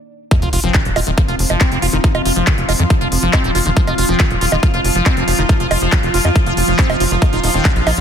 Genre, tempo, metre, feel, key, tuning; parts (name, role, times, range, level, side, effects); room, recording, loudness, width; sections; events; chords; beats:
psychedelic trance; 139 BPM; 4/4; straight; A4 = 440 Hz
pulsing gated texture; sustained chords; 0.9-8.0 s; F3 to F4; -20 LUFS; right 1 dB; chorus, built-in reverb, sidechain pumping
liquid acid bass; riff; 0.3-8.0 s; D3 to F4; -21 LUFS; left 1 dB; phaser, auto-pan, sidechain pumping, tape echo
big-room dance drum kit; drums; 0.3-8.0 s; bongos, handclaps, hi-hat; -20 LUFS; right 1 dB
electronic kick drum; drums; 0.3-7.7 s; -15 LUFS; equal
sub drop; sound effects; 0.4-2.0 s; -26 LUFS; equal
deep dark ambient pad; texture; 1.1-8.0 s; Bb3 to C6; -26 LUFS; equal; chorus, built-in reverb, sidechain pumping
tight sequencer bass; bass; 0.4-8.0 s; Eb1 to F2; -18 LUFS; equal
metallic wobble bass; second line; 0.6-7.7 s; C4 to F4; -31 LUFS; left 5 dB
light reverb, digital ambience; dense, heavily limited modern master; -12 LUFS; side -8 dB against mid
0.3-8.0 A section
break 0.0-0.3; drop 0.3-8.0; impact 0.3-2.0
0.3 F5; 7.2 Eb5
| 0.31 0.74 1.18 1.61 | 2.04 2.47 2.90 3.33 | 3.77 4.20 4.63 5.06 | 5.49 5.92 6.36 6.79 | 7.22 7.65